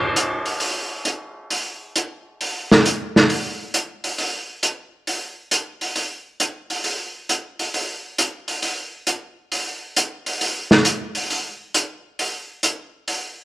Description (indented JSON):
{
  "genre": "jazz",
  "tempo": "135 BPM",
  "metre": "4/4",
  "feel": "swing 67% on 8ths",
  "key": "none",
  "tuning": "none",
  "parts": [
    { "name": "vintage drum kit", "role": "drums", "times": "0.2-13.2 s", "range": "hi-hat, snare drum", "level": "-19 LUFS", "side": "equal", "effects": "none" }
  ],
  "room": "light reverb",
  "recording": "none",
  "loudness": "-20 LUFS",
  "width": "side -17 dB against mid",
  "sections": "0.0-13.4 A section",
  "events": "none",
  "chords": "none"
}